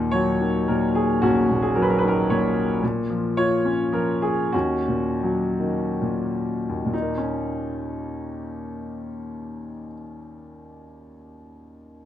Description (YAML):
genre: classical, lyrical solo piano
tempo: 62-115 BPM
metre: 3/4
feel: rubato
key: Eb minor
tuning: A4 = 440 Hz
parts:
  - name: bright grand piano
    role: solo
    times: 0.0-12.1 s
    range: Bb1 to Db5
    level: -22 LUFS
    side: equal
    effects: none
room: moderate recital hall reverb, RT60 1.4 s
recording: close, detailed microphones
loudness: -20 LUFS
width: side -11 dB against mid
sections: 0.0-6.9 A section; 6.9-12.1 B section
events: slowing down 2.8-6.9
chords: 0.0 Ebm7; 2.8 Bbm; 4.5 Ebm7; 6.9 Eb5